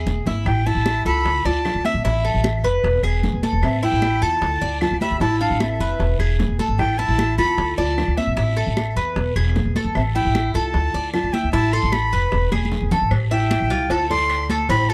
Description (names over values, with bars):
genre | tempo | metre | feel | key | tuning
latin, Cuban son and guajira | 152 BPM | 4/4 | straight | A minor | A4 = 439 Hz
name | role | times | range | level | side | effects
breathy bright jazz flute | melody | 0.0-14.9 s | E5 to C6 | -26 LUFS | equal | none
Cuban tres | arpeggios | 0.0-14.9 s | C4 to E5 | -28 LUFS | equal | none
upright bass | bass | 0.0-14.9 s | E1 to E2 | -24 LUFS | equal | none
bongos and cowbell | percussion | 0.1-14.9 s | none | -33 LUFS | equal | none
congas | percussion | 0.1-14.9 s | none | -29 LUFS | equal | none
guiro | percussion | 0.1-14.9 s | none | -41 LUFS | equal | none
nylon-string guitar | second line | 0.5-14.9 s | C4 to A4 | -29 LUFS | equal | none
claves | percussion | 0.5-14.5 s | none | -38 LUFS | equal | none
room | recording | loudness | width
little or no reverb | none | -20 LUFS | mono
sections
0.5-13.1 A section; 13.1-14.9 B section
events
drum fill 0.0-0.5, 12.5-13.1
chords
0.5 A5; 1.3 Dm; 2.0 Amadd9; 2.8 E; 3.6 A5; 4.4 Dm; 5.2 Amadd9; 6.0 E; 6.8 A5; 7.6 Dm; 8.4 Amadd9; 9.2 E; 10.0 Am7; 10.7 Dm; 11.5 Asus2; 12.3 E; 13.1 Am7; 13.9 D5